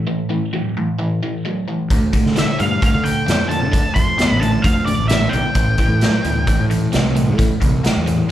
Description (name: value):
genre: blues rock power trio and southern rock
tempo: 131 BPM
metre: 4/4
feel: straight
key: A minor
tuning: A4 = 439 Hz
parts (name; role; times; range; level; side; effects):
- cranked stack guitar; riff; 0.0-8.3 s; A2 to B3; -20 LUFS; equal; overdrive, phaser, slapback echo
- fuzz fingered electric bass; bass; 1.9-8.2 s; A1 to D3; -20 LUFS; equal; overdrive
- raw garage drum kit; drums; 1.9-8.2 s; hi-hat, kick drum, snare drum; -18 LUFS; equal; none
- octave-fuzz lead guitar; melody; 2.4-6.6 s; D5 to C6; -21 LUFS; equal; distortion, plate reverb, slapback echo
room: moderate club reverb, RT60 0.5 s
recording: live gig heard through the venue's PA, club reverb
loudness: -15 LUFS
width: side -12 dB against mid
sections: 0.0-8.3 A section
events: none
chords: 0.0 A5; 1.9 Dm; 5.6 Am7